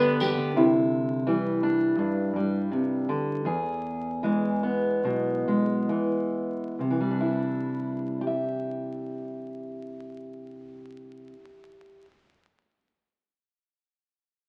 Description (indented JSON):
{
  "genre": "acoustic folk duo or small band",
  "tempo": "64-86 BPM",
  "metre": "4/4",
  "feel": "straight",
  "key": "C major",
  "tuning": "A4 = 440 Hz",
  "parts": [
    { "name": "fingerpicked steel-string acoustic guitar", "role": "accompaniment", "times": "0.0-12.1 s", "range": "E2 to E5", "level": "-28 LUFS", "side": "equal", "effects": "none" },
    { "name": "picked steel-string acoustic guitar", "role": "arpeggios", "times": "0.0-0.6 s", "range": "B3 to G4", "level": "-30 LUFS", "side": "equal", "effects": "none" },
    { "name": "picked electric bass", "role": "bass", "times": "0.0-11.3 s", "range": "B1 to G2", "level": "-38 LUFS", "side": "equal", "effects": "none" }
  ],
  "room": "wet studio reverb, RT60 0.6 s",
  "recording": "very old 78 rpm record, vinyl crackle",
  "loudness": "-27 LUFS",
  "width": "mono",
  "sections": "0.6-6.8 A section; 6.8-10.5 B section",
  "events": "slowing down 0.6-6.8",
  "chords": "0.0 G; 0.6 Cadd9; 3.4 E; 6.8 Cadd9",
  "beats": "| 0.55 1.25 1.96 2.69 | 3.44 4.22 5.03 5.89 | 6.79 7.73 8.66 9.60"
}